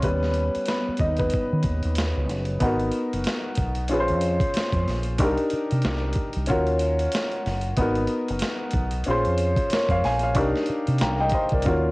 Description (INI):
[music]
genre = R&B, neo-soul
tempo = 93 BPM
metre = 4/4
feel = swing 58% on 16ths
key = unclear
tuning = A4 = 440 Hz
[part]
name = warm upright piano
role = accompaniment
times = 0.0-11.9 s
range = G3 to Bb5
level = -24 LUFS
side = left 1 dB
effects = cassette tape
[part]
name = deep dub fingered electric bass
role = bass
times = 0.0-11.9 s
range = F#1 to Eb3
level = -25 LUFS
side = equal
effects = none
[part]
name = boom bap sampler-style drum kit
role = drums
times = 0.0-11.8 s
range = hi-hat, kick drum, snare drum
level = -28 LUFS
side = equal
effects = none
[sound]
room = light reverb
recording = home recording on cassette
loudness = -21 LUFS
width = side -22 dB against mid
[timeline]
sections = 0.0-2.6 A section; 2.6-11.9 B section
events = upright piano solo 0.0-2.6; upright piano fill 11.6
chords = 0.0 Eb7b13; 2.6 Abm9; 3.9 Bbm9; 5.2 Cm9; 6.5 Ebm9; 7.8 Abm9; 9.1 Bbm9; 10.4 Cm9